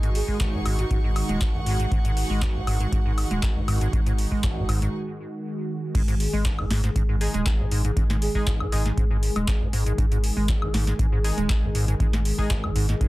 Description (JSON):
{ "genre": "acid house", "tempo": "119 BPM", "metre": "4/4", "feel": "straight", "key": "unclear", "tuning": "A4 = 440 Hz", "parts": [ { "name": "warm analog pad", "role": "sustained chords", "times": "0.0-13.1 s", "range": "D#3 to G#4", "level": "-32 LUFS", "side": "equal", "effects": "chorus, sidechain pumping" }, { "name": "liquid acid bass", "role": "riff", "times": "0.0-13.1 s", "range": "G#1 to G#3", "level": "-28 LUFS", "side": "equal", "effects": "chorus, overdrive, vintage 12-bit sampler grit, sidechain pumping" }, { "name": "saturated sub bass", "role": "bass", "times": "0.0-13.1 s", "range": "D#1 to G#1", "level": "-27 LUFS", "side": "equal", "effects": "sidechain pumping" }, { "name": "booming analog drum machine", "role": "drums", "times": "0.0-13.1 s", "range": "crash cymbal, handclaps, hi-hat, snare drum, woodblock", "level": "-32 LUFS", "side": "left 1 dB", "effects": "overdrive" }, { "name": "rich chamber string section", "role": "texture", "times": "0.0-4.9 s", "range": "D#4 to C#6", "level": "-34 LUFS", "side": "right 2 dB", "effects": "sidechain pumping" }, { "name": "breathy flute-like synth lead", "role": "melody", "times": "0.2-1.0, 8.2-8.4 s", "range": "F#4 to G#4", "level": "-34 LUFS", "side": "right 3 dB", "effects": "wide subtle chorus, dub echo" }, { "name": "electronic kick drum", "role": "drums", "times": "0.3-13.1 s", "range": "none", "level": "-25 LUFS", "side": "equal", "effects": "overdrive" }, { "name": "band-passed chord stab", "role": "stabs", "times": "7.2-12.5 s", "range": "G#3 to G#4", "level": "-35 LUFS", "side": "left 1 dB", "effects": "chorus, cassette tape, dub echo" } ], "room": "light reverb", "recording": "dense, heavily limited modern master", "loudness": "-21 LUFS", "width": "side -18 dB against mid", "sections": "0.0-5.9 A section; 5.9-13.1 B section", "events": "filter sweep on acid bass 0.0-5.9; break 4.9-5.9; drop 5.9-13.1", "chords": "0.0 G#5" }